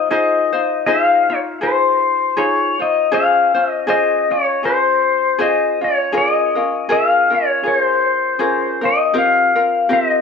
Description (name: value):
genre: hawaiian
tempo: 80 BPM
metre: 4/4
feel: swing 56% on 8ths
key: F minor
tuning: A4 = 441 Hz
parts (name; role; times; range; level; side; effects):
- pedal steel guitar; melody; 0.0-10.2 s; C5 to F5; -15 LUFS; left 3 dB; plate reverb, tape echo
- ukulele; accompaniment; 0.0-10.2 s; C4 to C5; -20 LUFS; left 1 dB; plate reverb
room: moderate studio reverb, RT60 0.7 s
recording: worn, warbling old tape, cassette tape, warbly pitch drift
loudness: -14 LUFS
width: side -6 dB against mid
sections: 0.1-10.2 A section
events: none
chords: 0.1 Fm7; 3.1 Dbmaj7; 6.1 Bbm7; 9.1 C7sus4